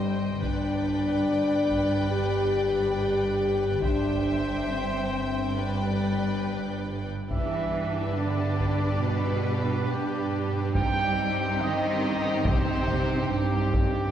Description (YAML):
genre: cinematic, epic orchestral film score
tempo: 70 BPM (dotted quarters)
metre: 6/8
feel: straight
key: G major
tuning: A4 = 441 Hz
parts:
  - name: clear symphonic violin section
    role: melody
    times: 0.0-14.1 s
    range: G4 to G5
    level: -37 LUFS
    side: left 3 dB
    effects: none
  - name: rich studio violin section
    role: second line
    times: 0.0-14.1 s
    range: Eb4 to E5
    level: -38 LUFS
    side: left 3 dB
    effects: none
  - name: clear symphonic viola section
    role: accompaniment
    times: 0.0-14.1 s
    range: C4 to C5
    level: -36 LUFS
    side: right 1 dB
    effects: none
  - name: warm French horn section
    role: sustained chords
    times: 0.0-14.0 s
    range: G3 to G4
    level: -29 LUFS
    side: left 2 dB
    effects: none
  - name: clear symphonic double bass section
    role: bass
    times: 0.0-14.1 s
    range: G1 to G2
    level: -32 LUFS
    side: right 2 dB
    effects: none
  - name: rich symphonic cello section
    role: bass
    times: 0.0-14.1 s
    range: G2 to G3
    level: -31 LUFS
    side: right 2 dB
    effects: none
  - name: taiko ensemble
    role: drums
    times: 0.4-14.1 s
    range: none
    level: -31 LUFS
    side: equal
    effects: none
  - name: bright trumpet section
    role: stabs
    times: 7.3-14.1 s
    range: G4 to G5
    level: -30 LUFS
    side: right 2 dB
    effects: none
room: wet concert hall reverb, RT60 2.4 s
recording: heard from further back in the room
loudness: -24 LUFS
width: side -10 dB against mid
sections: 0.0-7.3 A section; 7.3-14.1 A section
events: none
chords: 0.4 G; 3.8 C/G; 5.6 G; 10.8 Cm/G